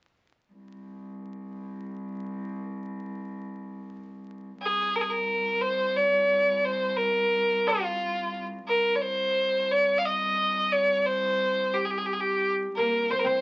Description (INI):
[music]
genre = persian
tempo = 59 BPM (dotted quarters)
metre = 6/8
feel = straight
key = C dastgah shur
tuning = A4 = 440 Hz
[part]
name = muted cello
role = drone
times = 0.5-13.4 s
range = C2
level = -40 LUFS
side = equal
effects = none
[part]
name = clear violin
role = melody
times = 4.6-13.4 s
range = F4 to F5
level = -26 LUFS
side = equal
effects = none
[part]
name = oud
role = second line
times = 12.8-13.4 s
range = Bb3 to C4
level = -30 LUFS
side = equal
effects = none
[sound]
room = moderate studio reverb, RT60 0.6 s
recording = very old 78 rpm record, vinyl crackle, nothing above 7.8 kHz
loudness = -26 LUFS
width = mono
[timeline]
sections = 0.5-4.6 A section; 4.6-13.4 B section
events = none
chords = none